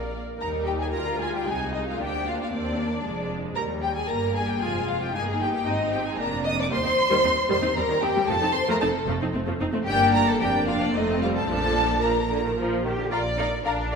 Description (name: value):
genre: quick classical-period movement for string orchestra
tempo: 114 BPM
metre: 3/4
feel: straight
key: Eb major, Bb major from 6.7 s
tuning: A4 = 440 Hz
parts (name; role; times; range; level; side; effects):
- rich symphonic violin section; melody; 0.0-14.0 s; Bb4 to Eb6; -27 LUFS; left 1 dB; none
- warm symphonic violin section; second line; 0.0-14.0 s; D4 to Bb5; -28 LUFS; left 2 dB; none
- clear symphonic viola section; accompaniment; 0.0-14.0 s; D3 to D5; -28 LUFS; equal; none
- rich chamber double bass section; bass; 0.0-14.0 s; F1 to Eb2; -33 LUFS; right 2 dB; none
- rich symphonic cello section; bass; 0.0-14.0 s; C2 to G4; -32 LUFS; right 2 dB; none
room: wet concert hall reverb, RT60 2.1 s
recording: minimal, uncompressed stereo recording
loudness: -22 LUFS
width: side -5 dB against mid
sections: 0.4-13.1 A section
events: none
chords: 0.4 Eb; 1.5 Ab/C; 2.0 Bb7/D; 3.6 Eb; 4.6 Fmadd9; 5.2 Eb/G; 6.7 Cm/Eb; 8.3 F7; 9.9 Gm; 10.4 Bb/F; 10.9 F7; 11.5 Bb